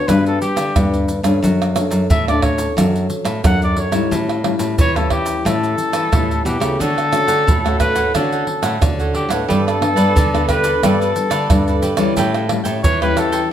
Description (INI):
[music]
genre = samba and choro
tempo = 89 BPM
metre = 4/4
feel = straight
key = D major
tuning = A4 = 439 Hz
[part]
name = warm trumpet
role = melody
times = 0.0-13.5 s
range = G4 to F#5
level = -20 LUFS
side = left 1 dB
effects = none
[part]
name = nylon-string guitar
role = accompaniment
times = 0.0-13.5 s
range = A2 to A4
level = -21 LUFS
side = left 2 dB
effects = none
[part]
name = nylon-string guitar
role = bass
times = 0.1-13.4 s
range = F#2 to E3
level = -20 LUFS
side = equal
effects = none
[part]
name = tube shaker, surdo, pandeiro and tamborim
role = percussion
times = 0.1-13.5 s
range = none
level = -19 LUFS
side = right 2 dB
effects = none
[part]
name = cavaquinho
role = accompaniment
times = 6.8-13.5 s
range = D4 to G5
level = -24 LUFS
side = right 7 dB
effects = none
[sound]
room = moderate large studio reverb, RT60 1.2 s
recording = none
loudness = -14 LUFS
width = side -10 dB against mid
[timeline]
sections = 0.0-13.5 A section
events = none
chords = 0.0 Gmaj7; 1.4 Dmaj7/F#; 4.1 A7; 6.8 Dmaj7; 9.5 Gadd9; 12.2 A7